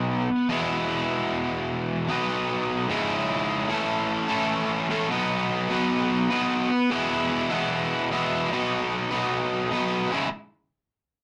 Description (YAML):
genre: punk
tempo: 149 BPM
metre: 4/4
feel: straight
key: unclear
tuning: A4 = 440 Hz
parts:
  - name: distorted electric guitar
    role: solo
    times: 0.0-10.3 s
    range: C#2 to B4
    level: -25 LUFS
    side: equal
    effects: distortion
room: moderate small room ambience, RT60 0.5 s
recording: rough rehearsal-room recording, tube saturation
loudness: -25 LUFS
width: mono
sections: 0.0-3.7 A section; 3.7-10.1 B section; 10.1-11.2 C section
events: none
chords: 0.5 E; 2.1 B; 2.9 C#m; 3.7 A; 5.1 B; 6.9 E; 8.5 B; 10.1 C#m